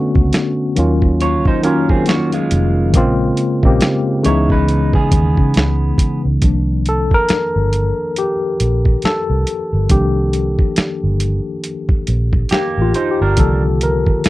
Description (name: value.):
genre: R&B, neo-soul.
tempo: 69 BPM.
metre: 4/4.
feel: swing 59% on 16ths.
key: unclear.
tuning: A4 = 440 Hz.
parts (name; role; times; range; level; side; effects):
tine electric piano; accompaniment; 0.0-14.3 s; Db3 to Bb4; -17 LUFS; left 2 dB; medium stereo tremolo.
vintage muted fingered electric bass; bass; 0.2-14.3 s; F1 to Db3; -16 LUFS; equal; none.
boom bap sampler-style drum kit; drums; 0.2-14.3 s; hi-hat, kick drum, snare drum; -16 LUFS; equal; none.
electric guitar through a small old amp; second line; 1.2-6.2, 12.5-13.6 s; Ab3 to Db5; -21 LUFS; right 4 dB; none.
room: little or no reverb.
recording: dry, close 1970s-style studio recording.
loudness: -13 LUFS.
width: side -17 dB against mid.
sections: 0.0-6.4 A section; 6.4-14.3 B section.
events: tine electric piano solo 6.4-14.3.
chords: 0.0 Bm9; 0.8 Ebm9; 2.9 Bbm9; 4.2 Dbm9; 6.4 Cm11.